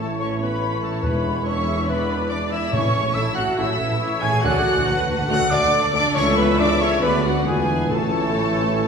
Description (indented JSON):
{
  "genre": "classical, dramatic, fast romantic movement for symphony orchestra",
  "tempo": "140 BPM",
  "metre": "4/4",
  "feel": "rubato",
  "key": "A major",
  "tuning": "A4 = 442 Hz",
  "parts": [
    { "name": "rich symphonic violin section", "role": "melody", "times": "0.0-8.9 s", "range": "F#5 to G#6", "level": "-28 LUFS", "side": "left 2 dB", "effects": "none" },
    { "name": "bright silver concert flute", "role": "second line", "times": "0.0-8.9 s", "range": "F#5 to G#6", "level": "-28 LUFS", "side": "equal", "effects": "none" },
    { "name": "mellow clarinet", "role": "second line", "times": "0.0-8.9 s", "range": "F#4 to G#5", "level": "-29 LUFS", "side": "left 2 dB", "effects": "none" },
    { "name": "rich studio violin section", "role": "second line", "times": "0.0-8.9 s", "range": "F#4 to G#5", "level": "-30 LUFS", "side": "left 2 dB", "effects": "none" },
    { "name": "rich symphonic viola section", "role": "accompaniment", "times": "0.0-8.9 s", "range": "A4 to E5", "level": "-29 LUFS", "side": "left 1 dB", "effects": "none" },
    { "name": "bright trombone section", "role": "sustained chords", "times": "0.0-8.9 s", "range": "D3 to B3", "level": "-30 LUFS", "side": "right 2 dB", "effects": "none" },
    { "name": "dark French horn section", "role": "sustained chords", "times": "0.0-8.9 s", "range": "C#4 to A4", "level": "-30 LUFS", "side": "left 2 dB", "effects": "none" },
    { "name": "concert harp", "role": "arpeggios", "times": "0.0-8.9 s", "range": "E2 to A5", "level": "-29 LUFS", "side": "left 4 dB", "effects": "none" },
    { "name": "bright trumpet section", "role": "stabs", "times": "0.0-8.9 s", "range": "F#4 to G#5", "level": "-29 LUFS", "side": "right 1 dB", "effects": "none" },
    { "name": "mellow tuba", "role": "bass", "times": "0.0-8.9 s", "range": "E1 to D2", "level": "-28 LUFS", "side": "right 2 dB", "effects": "none" },
    { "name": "warm symphonic cello section", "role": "bass", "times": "0.0-8.9 s", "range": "F#3 to G#4", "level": "-28 LUFS", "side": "right 2 dB", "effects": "none" },
    { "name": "warm symphonic double bass section", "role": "bass", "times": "0.0-8.9 s", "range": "A1 to E2", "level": "-28 LUFS", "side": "right 2 dB", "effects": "none" },
    { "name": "timpani", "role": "percussion", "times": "1.0-3.3, 7.9-8.5 s", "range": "E2 to A2", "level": "-30 LUFS", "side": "left 1 dB", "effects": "none" }
  ],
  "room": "wet recital hall reverb, RT60 1.8 s",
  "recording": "recorded in a church or concert hall",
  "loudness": "-18 LUFS",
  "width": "side -6 dB against mid",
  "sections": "0.0-8.9 A section",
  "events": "none",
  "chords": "0.0 A; 1.0 E7; 2.7 A; 4.4 Dmaj7; 6.2 A/C#; 7.0 Bm/D; 7.5 E7b9; 7.9 A",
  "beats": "0.21 0.63 | 1.05 1.46 1.88 2.31 | 2.73 3.15 3.58 4.01 | 4.44 4.87 5.30 5.73 | 6.16 6.59 7.03 7.47 | 7.91 8.36 8.81"
}